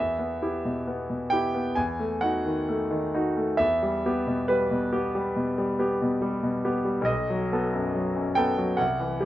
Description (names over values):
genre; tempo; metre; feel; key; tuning
classical, romantic character piece for solo piano; 63-73 BPM; 4/4; rubato; E minor; A4 = 440 Hz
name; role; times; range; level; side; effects
bright concert grand piano; solo; 0.0-9.3 s; B1 to G#5; -24 LUFS; equal; none
room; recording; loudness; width
light reverb; worn, warbling old tape, cassette tape, warbly pitch drift; -24 LUFS; side -14 dB against mid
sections
0.0-9.3 A section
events
none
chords
0.0 Em; 1.8 D#dim/E; 3.6 Em; 7.1 B7